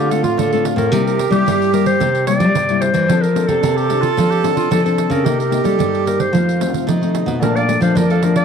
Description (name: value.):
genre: samba and choro.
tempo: 111 BPM.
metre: 4/4.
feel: straight.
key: unclear.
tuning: A4 = 440 Hz.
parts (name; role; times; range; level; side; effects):
clear clarinet; melody; 0.0-8.4 s; F4 to D5; -19 LUFS; left 1 dB; tape echo.
breathy tenor saxophone; second line; 0.0-8.4 s; D4 to A4; -21 LUFS; right 12 dB; none.
nylon-string guitar; accompaniment; 0.0-8.4 s; F2 to A4; -20 LUFS; left 12 dB; none.
nylon-string guitar; bass; 0.0-8.4 s; A2 to G3; -19 LUFS; left 1 dB; none.
pandeiro; percussion; 0.1-8.4 s; none; -23 LUFS; right 8 dB; none.
cavaquinho; accompaniment; 7.4-8.4 s; Bb4 to A5; -25 LUFS; right 12 dB; none.
room: light reverb, small room ambience.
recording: 1960s-style stereo with parts hard left and right.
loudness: -13 LUFS.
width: side -7 dB against mid.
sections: 0.0-8.4 A section.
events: none.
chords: 0.0 Dm7; 0.9 C7; 3.1 F6; 5.3 Cm7; 6.3 F7; 7.4 Bbmaj7.